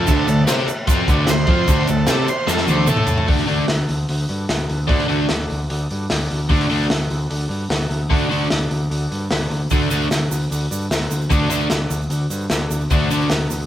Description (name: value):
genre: garage rock duo or trio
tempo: 150 BPM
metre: 4/4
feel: straight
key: D mixolydian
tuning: A4 = 441 Hz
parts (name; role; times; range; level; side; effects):
- overdriven combo organ; melody; 0.0-3.3 s; A4 to C5; -23 LUFS; right 4 dB; none
- biting overdriven guitar; riff; 0.0-13.3 s; D3 to C5; -20 LUFS; equal; none
- growling picked electric bass; bass; 0.0-13.7 s; D2 to C3; -22 LUFS; equal; overdrive, tube saturation
- overdriven combo organ; sustained chords; 0.1-13.6 s; E4 to E5; -32 LUFS; left 1 dB; none
- crunchy breakbeat drum kit; drums; 0.1-13.6 s; crash cymbal, hi-hat, kick drum, snare drum, toms; -21 LUFS; equal; none
- tube shaker; percussion; 0.1-3.2, 9.7-13.7 s; none; -33 LUFS; right 7 dB; none
room: light reverb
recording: band playing live in one room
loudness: -16 LUFS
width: side -12 dB against mid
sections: 0.0-3.3 A section; 3.3-13.7 B section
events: transistor combo organ solo 0.0-3.3; drum fill 2.5-3.3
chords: 0.0 D; 2.9 A5; 3.3 D